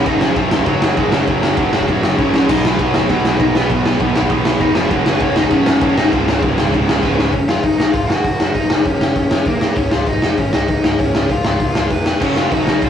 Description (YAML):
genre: punk rock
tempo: 198 BPM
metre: 4/4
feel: straight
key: unclear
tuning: A4 = 440 Hz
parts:
  - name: high-gain lead guitar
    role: melody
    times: 0.0-12.9 s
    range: F3 to Gb5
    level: -19 LUFS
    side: left 1 dB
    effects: distortion
  - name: crunchy overdriven guitar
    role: riff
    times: 0.0-7.3, 12.2-12.9 s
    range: Db2 to Cb4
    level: -23 LUFS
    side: right 6 dB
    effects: none
  - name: overdriven electric guitar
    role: riff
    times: 0.0-7.3, 12.2-12.9 s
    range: Db2 to Cb4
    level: -22 LUFS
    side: left 2 dB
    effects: none
  - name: scooped high-gain guitar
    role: riff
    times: 0.0-7.3, 12.2-12.9 s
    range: Db2 to Gb4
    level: -25 LUFS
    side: right 1 dB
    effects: distortion
  - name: growling picked electric bass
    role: bass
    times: 0.0-12.9 s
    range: Db1 to Cb2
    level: -23 LUFS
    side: right 1 dB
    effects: overdrive
  - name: raw garage drum kit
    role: drums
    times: 0.1-12.9 s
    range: crash cymbal, hi-hat, kick drum, ride cymbal, snare drum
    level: -16 LUFS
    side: equal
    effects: none
room: light reverb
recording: rough rehearsal-room recording, warm saturation, small room ambience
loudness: -13 LUFS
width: side -9 dB against mid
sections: 0.0-7.3 A section; 7.3-12.9 B section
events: drum fill 7.0-7.3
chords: 0.1 Gb; 2.5 Cb; 4.9 Gb5; 6.1 Db; 7.3 Gb; 9.8 Db; 12.2 Gb